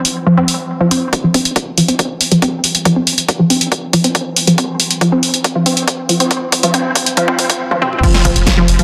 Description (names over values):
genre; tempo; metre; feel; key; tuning
driving peak-time techno; 139 BPM; 4/4; straight; unclear; A4 = 438 Hz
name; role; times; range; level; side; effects
punchy analog drum machine; drums; 0.0-8.8 s; crash cymbal, hi-hat, snare drum, toms; -18 LUFS; equal; none
resonant blip pluck; riff; 0.3-8.8 s; F3 to C4; -16 LUFS; equal; subtle chorus, sidechain pumping, delay
electronic kick drum; drums; 1.1-8.6 s; none; -19 LUFS; equal; overdrive, high-pass filter on kick
saturated sub bass; bass; 8.2-8.8 s; F1; -17 LUFS; equal; sidechain pumping, low-pass filter
room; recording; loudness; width
wet plate reverb, RT60 2.2 s; dense, heavily limited modern master, high-pass filter; -14 LUFS; mono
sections
0.0-1.1 A section; 1.1-8.0 B section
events
build-up 1.1-8.0; filter sweep on synth arpeggio sound 1.1-8.0; drum fill 4.6-7.6, 7.7-8.0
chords
0.0 F5; 8.0 N.C.